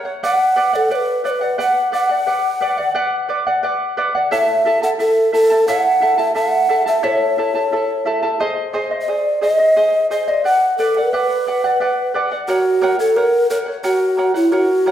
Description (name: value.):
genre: andean folk.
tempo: 88 BPM.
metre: 3/4.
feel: straight.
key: B dorian.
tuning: A4 = 443 Hz.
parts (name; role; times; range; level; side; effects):
charango; accompaniment; 0.0-14.9 s; E4 to A5; -20 LUFS; right 1 dB; none.
breathy mellow round clay ocarina; melody; 0.2-14.9 s; E4 to F#5; -15 LUFS; equal; none.
room: wet recital hall reverb, RT60 1.3 s.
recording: recorded in a church or concert hall.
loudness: -14 LUFS.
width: side -10 dB against mid.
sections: 0.0-12.5 A section; 12.5-14.9 A section.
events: none.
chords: 0.2 Bm; 4.3 A; 8.4 G#; 10.4 Bm; 12.5 F#.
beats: | 0.23 0.91 1.59 | 2.27 2.95 3.63 | 4.32 5.00 5.68 | 6.36 7.04 7.72 | 8.40 9.08 9.76 | 10.44 11.12 11.80 | 12.48 13.16 13.85 | 14.53.